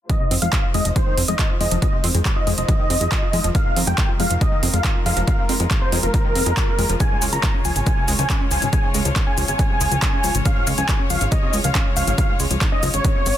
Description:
uplifting trance; 139 BPM; 4/4; straight; F minor; A4 = 440 Hz
dense compressed supersaw; melody; 0.1-13.4 s; Bb4 to Bb5; -24 LUFS; right 1 dB; sidechain pumping, low-pass filter, ping-pong delay
rich studio string section; sustained chords; 0.1-13.4 s; Db3 to Db5; -30 LUFS; left 2 dB; sidechain pumping, low-pass filter
tight sequenced synth; arpeggios; 0.1-13.3 s; Ab2 to F4; -28 LUFS; left 3 dB; chorus, sidechain pumping, ping-pong delay
big-room dance drum kit; drums; 0.1-13.3 s; handclaps, hi-hat, shaker; -25 LUFS; equal; overdrive
electronic kick drum; drums; 0.1-13.1 s; -20 LUFS; equal
plucky analog bass; bass; 0.3-13.3 s; F1 to F2; -22 LUFS; equal; sidechain pumping
little or no reverb; dense, heavily limited modern master; -17 LUFS; side -11 dB against mid
0.1-13.4 A section
filter sweep on string section 0.1-13.4
0.1 Fm7; 7.0 Db

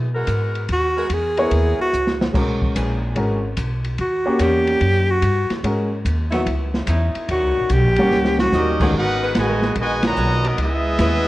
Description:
jazz, big band swing; 146 BPM; 4/4; swing 67% on 8ths; G# minor; A4 = 440 Hz
upright bass; bass; 0.0-11.3 s; G1 to B2; -21 LUFS; equal
warm saxophone section; sustained chords; 0.1-11.3 s; D#3 to C#5; -27 LUFS; left 1 dB
open jazz drum kit; drums; 0.3-11.1 s; crash cymbal, hi-hat, kick drum, ride cymbal, snare drum; -26 LUFS; equal
warm tenor saxophone; melody; 0.7-8.8 s; F#4 to G#4; -20 LUFS; equal
warm grand piano; accompaniment; 1.4-8.9 s; D#3 to F#5; -22 LUFS; equal
clear trombone section; second line; 8.5-11.3 s; A#2 to F#4; -24 LUFS; right 1 dB
bright trumpet section; melody; 8.6-11.3 s; B3 to A#5; -22 LUFS; equal
light reverb; worn, warbling old tape, cassette tape, warbly pitch drift; -17 LUFS; side -17 dB against mid
0.0-8.9 A section; 8.9-11.3 B section
tenor saxophone solo 0.0-8.9; drum fill 1.9-2.3, 8.1-8.5; band accent 10.0
0.0 G#m9; 2.3 E7; 4.0 D#7#9; 5.6 G#m9; 6.5 C#m9; 7.3 D#7#9; 8.9 G#m9; 10.6 C#m9

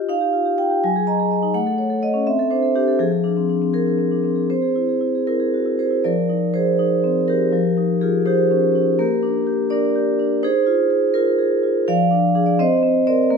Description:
classical, contemporary piece for solo vibraphone; 83 BPM (dotted quarters); 6/8; rubato; F dorian; A4 = 440 Hz
vibraphone with medium mallets; solo; 0.0-13.4 s; F3 to Bb5; -16 LUFS; equal
wet stone room reverb, RT60 1.3 s; -16 LUFS; side -5 dB against mid
0.0-6.1 A section; 6.1-13.4 B section
0.1 Ebadd9; 0.8 Gb69; 1.5 A6; 2.3 Csus2; 3.0 Fm6; 4.5 Caug7; 6.1 Fm11; 7.5 Eb9/F; 9.0 Bb6; 10.4 Ebsus24; 11.9 Fm6; 12.6 Cm7

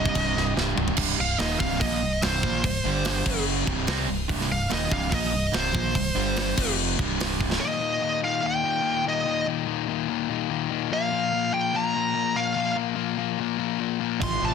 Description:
hard rock; 145 BPM; 4/4; straight; C minor; A4 = 441 Hz
bluesy overdriven lead guitar; melody; 0.0-14.5 s; C5 to C6; -27 LUFS; equal; distortion, plate reverb
crunchy overdriven guitar; riff; 0.0-7.6, 14.2-14.5 s; C2 to C4; -29 LUFS; right 14 dB
overdriven electric guitar; riff; 0.0-14.5 s; C2 to C4; -28 LUFS; left 13 dB
modern bright fingered electric bass; bass; 0.0-7.6, 14.2-14.5 s; C1 to C2; -31 LUFS; equal
tight metal drum kit; drums; 0.1-7.6, 14.2-14.3 s; crash cymbal, hi-hat, kick drum, snare drum, toms; -27 LUFS; equal; soft clipping on kick
light reverb; dense, heavily limited modern master; -23 LUFS; side -6 dB against mid
1.0-7.6 A section; 7.6-14.5 B section
drum fill 0.6-1.0, 7.4; lead electric guitar solo 1.0-7.6
0.0 Cm; 2.8 G5; 3.3 F#5; 3.7 Cm; 6.2 G5; 6.6 F5; 7.0 C5; 7.6 Eb5; 10.9 Bb5

